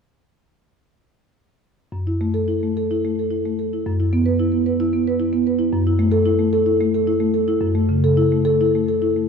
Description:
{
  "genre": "classical, contemporary piece for solo marimba",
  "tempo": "220 BPM (eighths)",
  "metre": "7/8",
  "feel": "rubato",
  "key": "F# minor",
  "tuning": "A4 = 441 Hz",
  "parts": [
    { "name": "marimba with soft mallets", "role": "solo", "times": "1.9-9.3 s", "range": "F#2 to B4", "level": "-17 LUFS", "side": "equal", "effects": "none" }
  ],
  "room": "wet church reverb, RT60 3.7 s",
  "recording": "dark, warm production",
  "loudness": "-17 LUFS",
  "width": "side -6 dB against mid",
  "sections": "1.9-9.3 A section",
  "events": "none",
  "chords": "1.9 F#m7; 3.9 F#7sus4; 5.7 F#m7",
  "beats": "| 1.92 2.20 2.48 2.76 3.04 3.31 3.58 | 3.86 4.13 4.40 4.67 4.93 5.20 5.47 | 5.73 6.00 6.27 6.54 6.81 7.08 7.36 | 7.63 7.90 8.18 8.46 8.74 9.02"
}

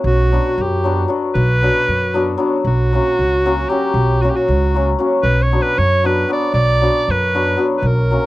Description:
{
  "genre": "balkan folk, Balkan wedding band",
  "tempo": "231 BPM (eighths)",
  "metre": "5/8",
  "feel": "straight",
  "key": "B harmonic minor",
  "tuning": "A4 = 438 Hz",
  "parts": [
    { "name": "hammered dulcimer", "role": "accompaniment", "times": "0.0-8.3 s", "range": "F#3 to F#4", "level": "-19 LUFS", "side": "left 2 dB", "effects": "none" },
    { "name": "upright bass", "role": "bass", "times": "0.0-8.2 s", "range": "B1 to F#2", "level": "-17 LUFS", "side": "equal", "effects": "none" },
    { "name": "bright alto saxophone", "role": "melody", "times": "0.1-8.3 s", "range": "F#4 to D5", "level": "-18 LUFS", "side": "right 1 dB", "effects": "none" }
  ],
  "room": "light reverb",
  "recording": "dry, close 1970s-style studio recording",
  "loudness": "-14 LUFS",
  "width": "side -16 dB against mid",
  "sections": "0.0-2.6 A section; 2.6-8.3 A section",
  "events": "none",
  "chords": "0.0 Bm; 2.6 F#/B; 5.2 Bm",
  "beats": "| 0.03 0.29 0.55 0.81 1.07 | 1.33 1.59 1.85 2.11 2.37 | 2.63 2.89 3.15 3.41 3.67 | 3.93 4.19 4.45 4.71 4.97 | 5.23 5.49 5.75 6.01 6.27 | 6.53 6.79 7.05 7.31 7.57 | 7.83 8.09"
}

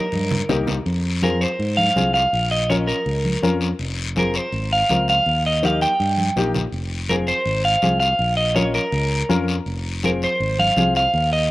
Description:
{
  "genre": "latin, cumbia",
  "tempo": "164 BPM",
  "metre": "4/4",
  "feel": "straight",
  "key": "F minor",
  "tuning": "A4 = 442 Hz",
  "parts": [
    { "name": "electric guitar at the edge of break-up", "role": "melody", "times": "0.0-11.5 s", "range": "Bb4 to G5", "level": "-20 LUFS", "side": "right 1 dB", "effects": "spring reverb, slapback echo" },
    { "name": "clear upright piano", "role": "accompaniment", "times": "0.0-11.0 s", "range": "Bb3 to Bb4", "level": "-25 LUFS", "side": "left 4 dB", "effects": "slapback echo" },
    { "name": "fingered electric bass", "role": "bass", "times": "0.1-11.5 s", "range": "F1 to Ab2", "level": "-24 LUFS", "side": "equal", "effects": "none" },
    { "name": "congas", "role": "percussion", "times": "0.1-11.0 s", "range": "none", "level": "-26 LUFS", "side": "right 1 dB", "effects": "none" },
    { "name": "guiro", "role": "percussion", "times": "0.1-11.5 s", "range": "none", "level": "-30 LUFS", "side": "left 5 dB", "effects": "none" }
  ],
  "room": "little or no reverb",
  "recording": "recorded outdoors, with no room sound",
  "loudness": "-17 LUFS",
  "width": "side -18 dB against mid",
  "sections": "0.0-6.7 A section; 6.7-11.5 A section",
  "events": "drum fill 0.0-0.9, 6.2-6.7",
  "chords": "0.0 Eb; 0.9 Fm; 2.3 Bbm; 3.8 Fm; 5.3 Eb; 6.7 Fm; 8.2 Bbm; 9.7 Fm",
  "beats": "0.13 0.50 | 0.86 1.23 1.60 1.96 | 2.33 2.70 3.06 3.43 | 3.79 4.16 4.53 4.89 | 5.26 5.63 6.00 6.36 | 6.73 7.09 7.46 7.83 | 8.20 8.56 8.93 9.30 | 9.66 10.03 10.40 10.77 | 11.13 11.50"
}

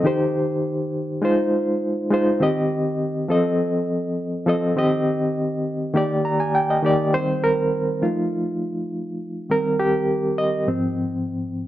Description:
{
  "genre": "soul",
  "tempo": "102 BPM",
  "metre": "4/4",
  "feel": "straight",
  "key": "Eb major",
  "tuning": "A4 = 436 Hz",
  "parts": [
    { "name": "barky reed electric piano", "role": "solo", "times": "0.0-11.7 s", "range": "Ab2 to Bb5", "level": "-19 LUFS", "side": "equal", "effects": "overdrive, fast tremolo" }
  ],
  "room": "moderate echo chamber reverb, RT60 1.8 s",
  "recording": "none",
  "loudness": "-19 LUFS",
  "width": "side -13 dB against mid",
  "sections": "0.0-7.1 A section; 7.1-11.7 B section",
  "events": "reed electric piano fill 6.0-7.1; reed electric piano solo 7.1-11.7",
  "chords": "0.0 Eb6; 1.2 Ab6; 2.4 Eb6; 3.3 F7; 4.8 Eb6; 6.0 Ebmaj7; 7.1 Eb6; 8.0 F7; 9.5 Eb6; 10.7 Ab6",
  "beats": "| 0.05 0.64 1.23 1.82 | 2.41 3.00 3.59 4.18 | 4.78 5.37 5.96 6.55 | 7.13 7.72 8.31 8.90 | 9.49 10.08 10.67 11.26"
}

